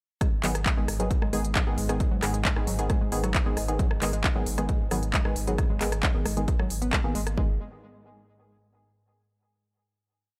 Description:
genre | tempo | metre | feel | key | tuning
driving peak-time techno | 134 BPM | 4/4 | straight | G# minor | A4 = 440 Hz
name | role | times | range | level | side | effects
warbly dusty pluck | riff | 0.2-7.6 s | F#3 to B3 | -37 LUFS | equal | chorus, overdrive, sidechain pumping, delay
analog drone | drone | 1.3-7.4 s | G#2 | -41 LUFS | equal | none
electronic kick drum | drums | 0.2-7.5 s | none | -29 LUFS | equal | studio reverb
techno drum kit | drums | 0.2-7.4 s | handclaps, hi-hat, rim click | -33 LUFS | equal | studio reverb
filtered dub chord stab | stabs | 0.4-7.5 s | D#3 to G#4 | -35 LUFS | equal | chorus, cassette tape, sidechain pumping, delay
saturated sub bass | bass | 0.4-7.6 s | G#1 | -33 LUFS | equal | sidechain pumping, low-pass filter
room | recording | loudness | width
light reverb | none | -26 LUFS | mono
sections
0.2-7.4 drop; 7.4-9.2 final chord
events
drop 0.2-7.4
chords
0.2 G#m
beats
| 0.21 0.66 1.11 1.55 | 2.00 2.45 2.90 3.35 | 3.79 4.24 4.69 5.14 | 5.58 6.03 6.48 6.93 | 7.38

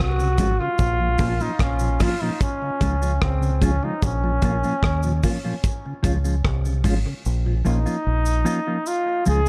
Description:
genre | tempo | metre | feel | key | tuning
dub reggae | 74 BPM | 4/4 | straight | Bb minor | A4 = 441 Hz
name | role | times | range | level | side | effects
brilliant trombone | melody | 0.0-9.5 s | C4 to Ab4 | -28 LUFS | equal | dub echo
deep dub fingered electric bass | bass | 0.0-9.5 s | Ab1 to Eb2 | -24 LUFS | equal | none
cloth-damped thuddy drum kit | drums | 0.0-7.0 s | hi-hat, kick drum, rim click | -25 LUFS | equal | none
mellow tonewheel organ | accompaniment | 0.2-7.5 s | Bb2 to F4 | -32 LUFS | equal | chorus vibrato, slow rotary speaker
cabasa | percussion | 0.2-9.5 s | none | -42 LUFS | equal | none
mellow electric guitar | accompaniment | 0.4-9.5 s | F3 to F4 | -29 LUFS | equal | none
room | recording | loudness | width
light reverb, small room ambience | dark, warm production | -22 LUFS | mono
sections
0.0-9.5 A section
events
part muted 7.2-9.5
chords
0.0 Db; 0.8 Bbm; 2.4 Db; 4.0 Bbm; 5.6 Db; 7.2 Bbm; 8.9 Db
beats
| 0.79 1.59 2.40 3.21 | 4.02 4.82 5.63 6.44 | 7.24 8.05 8.86

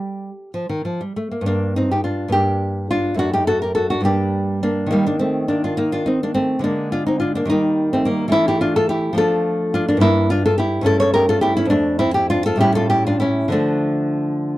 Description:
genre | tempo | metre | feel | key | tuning
classical, baroque-style dance for nylon-string guitar | 65-72 BPM (dotted quarters) | 6/8 | rubato | G minor, D minor from 8.3 s | A4 = 440 Hz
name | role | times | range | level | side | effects
nylon-string guitar | solo | 0.0-14.6 s | F2 to C#5 | -16 LUFS | equal | none
room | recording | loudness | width
light reverb | dry, close 1970s-style studio recording | -16 LUFS | side -16 dB against mid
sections
0.0-1.5 A section; 1.5-14.6 B section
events
none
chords
0.0 N.C.; 1.5 Gm; 3.2 D/F#; 4.0 Gm; 4.9 Eb5; 6.6 Bb7/D; 7.5 Eb; 8.3 A/E; 9.2 Dm/F; 10.0 Em7b5/G; 10.9 A7/G; 11.7 Dm/F; 12.6 A7; 13.5 Dm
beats
0.55 | 1.46 2.33 | 3.18 4.04 | 4.90 5.76 | 6.62 7.49 | 8.33 9.18 | 10.03 10.86 | 11.71 12.60 | 13.51 14.43

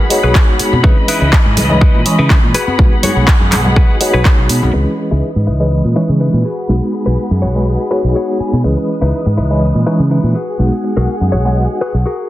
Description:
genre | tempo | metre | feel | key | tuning
filtered disco house | 123 BPM | 4/4 | straight | C# minor | A4 = 440 Hz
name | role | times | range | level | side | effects
reed electric piano | accompaniment | 0.0-11.8 s | E3 to D#5 | -17 LUFS | equal | overdrive, fast tremolo, phaser, sidechain pumping, low-pass filter
clear symphonic string section | sustained chords | 0.0-12.3 s | E3 to D#6 | -23 LUFS | left 1 dB | sidechain pumping, low-pass filter
direct-recorded clean electric guitar | riff | 0.0-12.3 s | D#4 to G#5 | -21 LUFS | left 3 dB | sidechain pumping, low-pass filter
egg shaker and congas | percussion | 0.0-4.7 s | none | -22 LUFS | left 1 dB | sidechain pumping on perc, low-pass filter on perc
house drum kit | drums | 0.1-4.6 s | handclaps, hi-hat | -18 LUFS | right 1 dB | overdrive, sidechain pumping on hats
modern bright fingered electric bass | bass | 0.2-12.0 s | B1 to C#3 | -14 LUFS | equal | sidechain pumping, low-pass filter
electronic kick drum | drums | 0.4-4.4 s | none | -10 LUFS | equal | overdrive
room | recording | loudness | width
digital ambience | dense, heavily limited modern master | -10 LUFS | side -15 dB against mid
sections
0.0-4.7 A section; 4.7-12.3 B section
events
filter sweep 4.7-12.3; clean electric guitar fill 7.9-8.6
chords
0.0 G#m7/B; 0.8 C#m9; 2.5 G#m7/B; 4.7 C#m9; 6.4 G#m7/B; 8.6 C#m9; 10.4 G#m7/B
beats
0.35 | 0.84 1.33 1.81 2.30 | 2.79 3.28 3.77 4.25 | 4.74 5.23 5.72 6.21 | 6.69 7.18 7.67 8.16 | 8.64 9.13 9.62 10.11 | 10.60 11.08 11.57 12.06

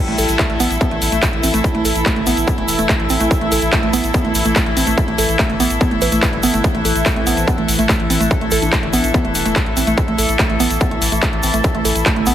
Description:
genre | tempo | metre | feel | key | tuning
psychedelic trance | 144 BPM | 4/4 | straight | unclear | A4 = 441 Hz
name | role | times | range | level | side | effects
overtone-sweeping drone | sustained chords | 0.0-12.3 s | E3 to A4 | -23 LUFS | equal | chorus, built-in reverb, sidechain pumping
rich chamber string section | texture | 0.0-12.3 s | E4 to E5 | -22 LUFS | left 1 dB | sidechain pumping
woody wave-folded pluck | riff | 0.1-12.3 s | G3 to B4 | -20 LUFS | right 2 dB | chorus, auto-pan, sidechain pumping, ping-pong delay
round analog bass | bass | 0.1-12.3 s | E1 to A1 | -22 LUFS | equal | none
drum and bass drum kit | drums | 0.1-12.3 s | handclaps, hi-hat | -22 LUFS | left 1 dB | overdrive, studio reverb
tube shaker | percussion | 0.2-12.3 s | none | -26 LUFS | right 2 dB | none
electronic kick drum | drums | 0.4-12.1 s | none | -19 LUFS | equal | distortion, studio reverb
vowel-sweep wobble bass | second line | 7.2-9.2 s | C4 to D4 | -30 LUFS | left 3 dB | none
room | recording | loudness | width
light reverb | heavily compressed radio sound | -14 LUFS | side -11 dB against mid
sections
0.0-12.3 A section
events
none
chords
0.0 A5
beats
0.39 0.81 1.23 | 1.64 2.06 2.48 2.89 | 3.31 3.73 4.14 4.56 | 4.98 5.39 5.81 6.23 | 6.64 7.06 7.48 7.89 | 8.31 8.73 9.14 9.56 | 9.98 10.39 10.81 11.23 | 11.64 12.06

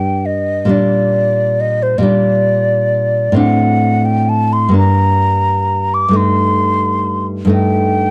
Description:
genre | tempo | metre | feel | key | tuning
romantic duo for flute and classical guitar | 44 BPM (dotted quarters) | 6/8 | rubato | G minor | A4 = 435 Hz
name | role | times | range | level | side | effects
mellow hollow silver concert flute | melody | 0.0-8.1 s | C5 to D6 | -18 LUFS | equal | none
nylon-string guitar | accompaniment | 0.0-8.1 s | G2 to Eb4 | -16 LUFS | equal | none
room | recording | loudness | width
small room reverb | dry, close 1970s-style studio recording | -14 LUFS | mono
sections
0.0-8.1 A section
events
none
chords
0.0 G5; 0.7 Gm/Bb; 3.4 D7/A; 4.8 Gm; 6.2 Am7b5/G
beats
| 0.70 2.04 | 3.39 4.75 | 6.16 7.53

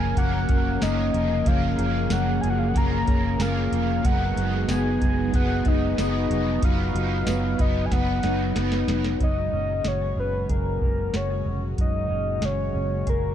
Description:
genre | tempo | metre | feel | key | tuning
dream pop | 93 BPM | 4/4 | straight | F# major | A4 = 440 Hz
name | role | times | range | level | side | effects
soft octave-layered synth lead | melody | 0.0-13.3 s | A#4 to A#5 | -29 LUFS | left 2 dB | chorus, digital delay
crunchy overdriven guitar | accompaniment | 0.0-9.7 s | F#3 to B4 | -33 LUFS | right 4 dB | harmonic tremolo, ensemble chorus
warm analog pad | sustained chords | 0.0-13.3 s | A#2 to B4 | -31 LUFS | right 3 dB | chorus
mellow electric guitar | arpeggios | 0.0-13.3 s | E#3 to G#4 | -28 LUFS | left 3 dB | analog chorus, digital delay
vintage muted fingered electric bass | bass | 0.0-13.3 s | E#1 to F#1 | -27 LUFS | equal | none
vibraphone with soft mallets | texture | 0.0-8.4 s | A#4 to E#6 | -42 LUFS | right 1 dB | none
soft vintage rhythm box | drums | 0.2-13.2 s | hi-hat, kick drum, snare drum, tambourine | -25 LUFS | equal | none
room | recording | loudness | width
light reverb, digital ambience | dark, warm production | -21 LUFS | side -10 dB against mid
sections
0.0-9.2 A section; 9.2-13.3 B section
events
drum fill 7.9-9.2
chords
0.0 F#maj7; 4.0 G#m7/F#; 6.6 B/F#; 9.2 F#add9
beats
0.17 0.82 | 1.46 2.11 2.75 3.40 | 4.04 4.69 5.33 5.98 | 6.62 7.27 7.91 8.56 | 9.20 9.85 10.49 11.14 | 11.78 12.43 13.07

